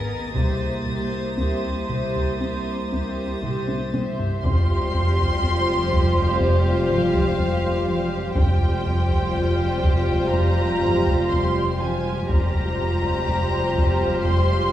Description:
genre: cinematic, suspense film score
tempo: 61 BPM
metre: 4/4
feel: straight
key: unclear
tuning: A4 = 440 Hz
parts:
  - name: dark studio violin section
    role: melody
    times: 0.0-14.7 s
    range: D#5 to C6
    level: -29 LUFS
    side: equal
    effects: none
  - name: warm studio violin section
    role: second line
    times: 0.0-14.7 s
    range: G4 to C5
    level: -30 LUFS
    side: left 1 dB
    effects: none
  - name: rich studio viola section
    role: accompaniment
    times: 0.0-14.7 s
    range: G3 to G#4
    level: -30 LUFS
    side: right 1 dB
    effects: none
  - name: warbly tape-like pad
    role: sustained chords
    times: 0.0-14.7 s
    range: F4 to C6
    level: -31 LUFS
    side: equal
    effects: chorus, built-in reverb
  - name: rubbery square bass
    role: riff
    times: 0.0-14.5 s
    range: F2 to C4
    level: -24 LUFS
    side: equal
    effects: none
  - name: dark studio cello section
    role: bass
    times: 0.0-14.7 s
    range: F2 to B3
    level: -31 LUFS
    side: equal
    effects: none
  - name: saturated sub bass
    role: drone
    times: 0.0-14.7 s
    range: F1 to C2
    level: -32 LUFS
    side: left 1 dB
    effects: none
  - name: rich studio violin section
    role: texture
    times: 0.0-3.9 s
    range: D#6 to A6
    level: -36 LUFS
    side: left 1 dB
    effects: none
  - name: dark studio double bass section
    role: bass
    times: 0.4-14.7 s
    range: F1 to C2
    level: -31 LUFS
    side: right 1 dB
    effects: none
  - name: taiko ensemble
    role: drums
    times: 0.4-14.7 s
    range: none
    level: -27 LUFS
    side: equal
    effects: none
  - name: dark trombone section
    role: sustained chords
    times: 4.4-14.7 s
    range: C3 to F3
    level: -32 LUFS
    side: equal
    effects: none
  - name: warm French horn section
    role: sustained chords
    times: 4.4-14.7 s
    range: G3 to F4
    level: -30 LUFS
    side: equal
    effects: none
room: wet recital hall reverb, RT60 1.4 s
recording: recorded in a church or concert hall, small room ambience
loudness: -19 LUFS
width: side -12 dB against mid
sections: 0.0-4.4 A section; 4.4-14.7 B section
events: drum fill 3.4-4.4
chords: 0.4 C7; 4.4 Fsus2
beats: | 0.35 1.38 2.41 3.43 | 4.44 5.43 6.41 7.38 | 8.36 9.34 10.32 11.31 | 12.30 13.27 14.24

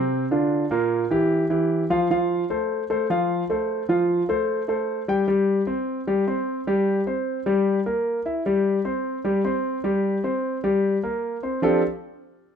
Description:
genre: jazz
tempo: 151 BPM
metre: 4/4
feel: straight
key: F major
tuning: A4 = 440 Hz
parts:
  - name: warm grand piano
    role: solo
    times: 0.0-11.8 s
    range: Bb2 to G5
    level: -21 LUFS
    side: equal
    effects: none
room: light reverb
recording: minimal, uncompressed stereo recording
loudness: -21 LUFS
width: side -7 dB against mid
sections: 0.0-5.3 A section; 5.3-11.6 B section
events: none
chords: 0.0 D7(no3); 0.5 Gm7; 1.3 Em; 2.1 Fadd9; 5.3 Gsus4; 6.9 C5; 8.5 Gsus4; 10.0 C5; 11.6 F69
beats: 0.11 | 0.51 0.91 1.30 1.70 | 2.10 2.50 2.89 3.29 | 3.69 4.08 4.48 4.88 | 5.28 5.67 6.07 6.47 | 6.86 7.26 7.66 8.05 | 8.45 8.85 9.24 9.64 | 10.04 10.44 10.83 11.23 | 11.63

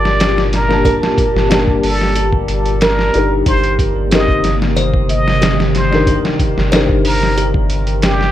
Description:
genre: trip hop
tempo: 92 BPM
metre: 4/4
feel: straight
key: unclear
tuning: A4 = 441 Hz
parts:
  - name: trumpet with plunger mute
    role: melody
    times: 0.0-8.3 s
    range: G4 to Eb5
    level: -20 LUFS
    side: equal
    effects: dub echo
  - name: dark upright piano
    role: accompaniment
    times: 0.0-8.3 s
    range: Bb3 to A5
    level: -19 LUFS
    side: left 2 dB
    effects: harmonic tremolo, tape echo
  - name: warbly tape-like pad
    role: sustained chords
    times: 0.0-8.3 s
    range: Bb2 to G4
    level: -22 LUFS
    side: equal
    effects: chorus, built-in reverb, phaser
  - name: soft dub sub bass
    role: bass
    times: 0.0-8.3 s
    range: G1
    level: -18 LUFS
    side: equal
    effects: none
  - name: trip hop sampler-style drum kit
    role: drums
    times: 0.1-8.3 s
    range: hi-hat, kick drum, snare drum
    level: -17 LUFS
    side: equal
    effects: none
  - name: music box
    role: arpeggios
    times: 0.2-8.3 s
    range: G4 to C5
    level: -22 LUFS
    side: left 1 dB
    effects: tape echo
room: light reverb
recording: none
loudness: -11 LUFS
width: side -12 dB against mid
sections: 0.0-8.3 A section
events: none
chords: 0.0 Gmadd9; 3.5 Cm7/G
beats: 0.20 | 0.85 1.50 2.16 2.81 | 3.46 4.11 4.76 5.42 | 6.07 6.72 7.37 8.03

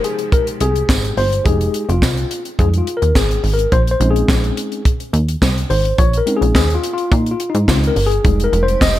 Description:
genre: early-eighties boogie funk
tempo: 106 BPM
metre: 4/4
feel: straight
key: F minor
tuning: A4 = 442 Hz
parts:
  - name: tine electric piano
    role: accompaniment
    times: 0.0-9.0 s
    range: G3 to Eb5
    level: -18 LUFS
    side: left 3 dB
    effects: overdrive, fast stereo tremolo
  - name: tight funk drum kit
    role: drums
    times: 0.0-9.0 s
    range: handclaps, hi-hat, kick drum, snare drum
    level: -18 LUFS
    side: equal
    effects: none
  - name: plucky analog bass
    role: bass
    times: 0.6-9.0 s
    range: F1 to Bb2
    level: -16 LUFS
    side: equal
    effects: none
  - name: tambourine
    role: percussion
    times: 0.9-9.0 s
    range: none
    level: -29 LUFS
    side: right 6 dB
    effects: none
  - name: icy glass pad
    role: sustained chords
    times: 8.4-9.0 s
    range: C3 to G4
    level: -35 LUFS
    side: equal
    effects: chorus, built-in reverb
room: light reverb, small room ambience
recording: none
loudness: -14 LUFS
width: side -14 dB against mid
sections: 0.0-9.0 A section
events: tine electric piano solo 0.0-9.0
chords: 0.0 Fm9; 3.7 Bbm11; 8.2 Fm9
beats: 0.32 0.89 | 1.46 2.02 2.59 3.15 | 3.72 4.29 4.85 5.42 | 5.98 6.55 7.12 7.68 | 8.25 8.81

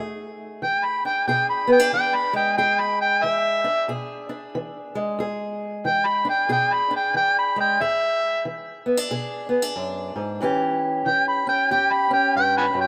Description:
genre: acoustic country blues, solo or duo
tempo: 92 BPM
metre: 4/4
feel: swing 61% on 8ths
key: E mixolydian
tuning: A4 = 440 Hz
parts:
  - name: fingerpicked steel-string acoustic guitar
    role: accompaniment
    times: 0.0-12.9 s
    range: E2 to G#4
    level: -27 LUFS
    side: equal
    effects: none
  - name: overdriven harmonica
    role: melody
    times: 0.6-12.9 s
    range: E5 to B5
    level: -22 LUFS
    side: equal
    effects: none
room: moderate lush hall reverb, RT60 3.1 s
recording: rough home demo mix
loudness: -22 LUFS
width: mono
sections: 0.0-12.9 A section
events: none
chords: 0.0 E7; 10.4 A7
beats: 0.62 1.27 1.93 | 2.58 3.24 3.89 4.54 | 5.20 5.85 6.50 7.15 | 7.80 8.46 9.11 9.76 | 10.41 11.06 11.71 12.36

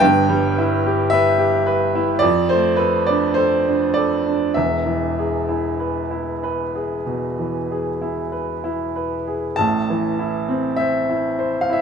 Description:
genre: classical, romantic nocturne for solo piano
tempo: 47-55 BPM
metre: 4/4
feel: rubato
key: unclear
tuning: A4 = 440 Hz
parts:
  - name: clear baby grand piano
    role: solo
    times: 0.0-11.8 s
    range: E1 to A5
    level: -17 LUFS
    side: right 1 dB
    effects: none
room: light reverb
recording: nothing above 11.0 kHz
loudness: -18 LUFS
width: side -6 dB against mid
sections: 0.0-11.8 A section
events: none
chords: 0.0 Em/G; 2.2 Dm/F; 4.5 E; 9.6 Am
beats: | 0.02 1.13 2.23 3.37 | 4.55 5.80 7.07 8.32 | 9.59 10.80

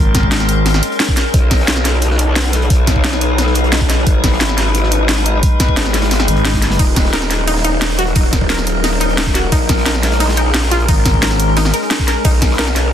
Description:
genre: dark technical drum and bass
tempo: 176 BPM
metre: 4/4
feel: straight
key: Eb minor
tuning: A4 = 440 Hz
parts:
  - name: metallic inharmonic drone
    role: sustained chords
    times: 0.0-12.9 s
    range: F#3 to B4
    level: -19 LUFS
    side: left 2 dB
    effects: chorus, built-in reverb, vintage 12-bit sampler grit, sidechain pumping
  - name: growling FM bass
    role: bass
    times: 0.0-0.8, 6.3-6.8, 10.9-11.7 s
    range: Ab1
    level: -15 LUFS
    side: equal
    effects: none
  - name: crunchy breakbeat drum kit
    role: drums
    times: 0.1-12.8 s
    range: hi-hat, snare drum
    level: -28 LUFS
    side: equal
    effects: none
  - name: drum and bass drum kit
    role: drums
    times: 0.1-12.8 s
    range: hi-hat, ride cymbal, snare drum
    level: -18 LUFS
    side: equal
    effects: overdrive
  - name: electronic kick drum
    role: drums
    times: 0.1-12.5 s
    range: none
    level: -14 LUFS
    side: equal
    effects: overdrive
  - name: growl bass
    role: bass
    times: 1.3-12.9 s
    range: Eb1 to B1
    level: -16 LUFS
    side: equal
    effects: chorus, overdrive, sidechain pumping
  - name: swell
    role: sound effects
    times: 6.3-6.8 s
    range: none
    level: -27 LUFS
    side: right 2 dB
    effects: none
  - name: wide unison pluck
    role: arpeggios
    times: 6.8-12.6 s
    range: Eb4 to Bb4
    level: -21 LUFS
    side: equal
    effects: sidechain pumping, tape echo
room: light reverb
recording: dense, heavily limited modern master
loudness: -12 LUFS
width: side -10 dB against mid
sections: 0.0-12.9 A section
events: swell 6.3-6.8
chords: 0.0 Bbm7; 1.3 B; 4.1 Abm; 6.8 Ebm; 9.5 Bbm7; 12.2 B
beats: 0.32 0.66 1.00 | 1.34 1.68 2.02 2.36 | 2.70 3.04 3.38 3.73 | 4.07 4.41 4.75 5.09 | 5.43 5.77 6.11 6.45 | 6.79 7.13 7.47 7.82 | 8.16 8.50 8.84 9.18 | 9.52 9.86 10.20 10.54 | 10.88 11.22 11.57 11.91 | 12.25 12.59 12.93

